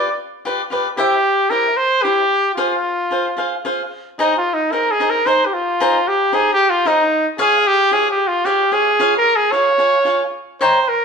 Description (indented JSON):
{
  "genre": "mexican folk, mariachi",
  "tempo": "112 BPM",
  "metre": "3/4",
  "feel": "straight",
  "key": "F minor, Ab major from 4.2 s",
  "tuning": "A4 = 442 Hz",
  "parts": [
    { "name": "bright trumpet", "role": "melody", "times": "0.0-11.0 s", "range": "Eb4 to D5", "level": "-15 LUFS", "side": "equal", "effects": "none" },
    { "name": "cavaquinho", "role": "accompaniment", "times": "0.0-10.8 s", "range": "Eb4 to Bb5", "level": "-20 LUFS", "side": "left 1 dB", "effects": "none" }
  ],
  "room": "wet stone room reverb, RT60 1.1 s",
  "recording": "band playing live in one room",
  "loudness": "-14 LUFS",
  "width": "side -5 dB against mid",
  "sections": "0.0-4.2 A section; 4.2-11.0 B section",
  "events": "none",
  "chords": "0.0 G7; 1.0 C; 2.6 Fm; 4.2 Ab; 7.4 Db",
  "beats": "0.44 | 0.97 1.50 2.03 | 2.57 3.10 3.65 | 4.19 4.73 5.27 | 5.80 6.33 6.87 | 7.40 7.93 8.46 | 8.99 9.53 10.06 | 10.61"
}